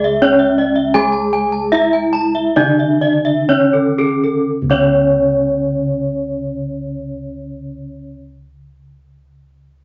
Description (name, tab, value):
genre	Balinese gamelan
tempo	57-87 BPM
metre	4/4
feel	straight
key	C# pelog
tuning	A4 = 440 Hz
part	gamelan-type bronze metallophone	melody	0.0-8.2 s	C#4 to G#4	-20 LUFS	equal	none
part	gamelan-type bronze metallophone	accompaniment	0.0-8.2 s	C#3 to G#3	-28 LUFS	equal	none
part	gamelan-type bronze metallophone	arpeggios	0.0-8.2 s	G#4 to A5	-19 LUFS	equal	none
part	gamelan-type bronze metallophone	arpeggios	0.0-8.2 s	A4 to A5	-27 LUFS	equal	none
part	gamelan-type bossed gongs	bass	0.0-8.1 s	C#2 to G#4	-29 LUFS	equal	none
room	wet studio reverb, RT60 0.6 s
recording	nothing above 7.6 kHz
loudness	-15 LUFS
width	mono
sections	0.0-4.5 A section; 4.5-8.7 B section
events	slowing down 0.0-4.5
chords	none